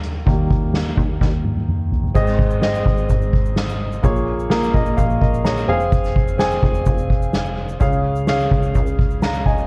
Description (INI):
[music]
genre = piano-driven pop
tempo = 127 BPM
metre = 4/4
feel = straight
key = Ab major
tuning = A4 = 437 Hz
[part]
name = warm upright piano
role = accompaniment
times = 0.0-9.7 s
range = Ab2 to Bb5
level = -24 LUFS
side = equal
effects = none
[part]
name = plucky analog bass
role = bass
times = 0.0-9.7 s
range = F1 to Eb2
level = -26 LUFS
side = equal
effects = none
[part]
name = soft-mallet drum kit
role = drums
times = 0.0-9.6 s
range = crash cymbal, hi-hat, kick drum, snare drum, toms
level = -21 LUFS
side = equal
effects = vintage 12-bit sampler grit
[part]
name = tube shaker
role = percussion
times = 2.2-9.7 s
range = none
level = -54 LUFS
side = equal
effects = none
[sound]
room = little or no reverb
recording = worn, warbling old tape, cassette tape, warbly pitch drift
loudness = -19 LUFS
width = mono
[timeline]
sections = 0.0-2.2 A section; 2.2-9.7 B section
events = upright piano solo 0.0-2.2; drum fill 1.2-2.2; upright piano fill 4.5-5.9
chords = 0.0 Eb; 2.2 Ab; 4.0 Bbm7; 5.7 Fm; 7.8 Db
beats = | 0.27 0.74 1.21 1.68 | 2.15 2.62 3.09 3.56 | 4.04 4.51 4.98 5.45 | 5.92 6.39 6.87 7.34 | 7.81 8.28 8.75 9.22